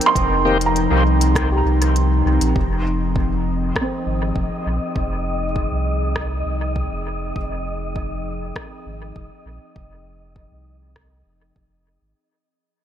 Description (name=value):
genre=ambient dub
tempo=100 BPM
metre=4/4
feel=straight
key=F minor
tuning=A4 = 440 Hz
part: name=warbly tape-like pad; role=sustained chords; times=0.0-12.2 s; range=F3 to G5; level=-25 LUFS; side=left 2 dB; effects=chorus, built-in reverb
part: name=felt-muted upright piano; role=arpeggios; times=0.0-7.4 s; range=C4 to C6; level=-24 LUFS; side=right 3 dB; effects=dub echo
part: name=organic electronic drum kit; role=drums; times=0.0-11.1 s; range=hi-hat, rim click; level=-29 LUFS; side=left 1 dB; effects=dub echo
part: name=warm sub bass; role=bass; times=0.2-12.1 s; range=F1 to C2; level=-21 LUFS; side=equal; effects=none
part: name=electronic kick drum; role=drums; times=0.2-11.7 s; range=none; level=-26 LUFS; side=equal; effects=none
part: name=bright tonewheel organ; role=stabs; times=0.5-0.6 s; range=Eb3 to G4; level=-26 LUFS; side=left 3 dB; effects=overdrive, slow rotary speaker, dub echo
part: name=wind-like tuned noise texture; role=texture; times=3.2-12.2 s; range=Eb5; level=-30 LUFS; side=left 2 dB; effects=built-in reverb
room=light reverb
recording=none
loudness=-18 LUFS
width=side -10 dB against mid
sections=0.0-2.6 A section; 2.6-12.2 B section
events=fade-out 2.6-12.2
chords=0.0 Cm7/F; 2.6 Fm7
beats=| 0.16 0.76 1.36 1.96 | 2.56 3.16 3.76 4.36 | 4.96 5.56 6.16 6.76 | 7.36 7.96 8.56 9.16 | 9.76 10.36 10.96 11.56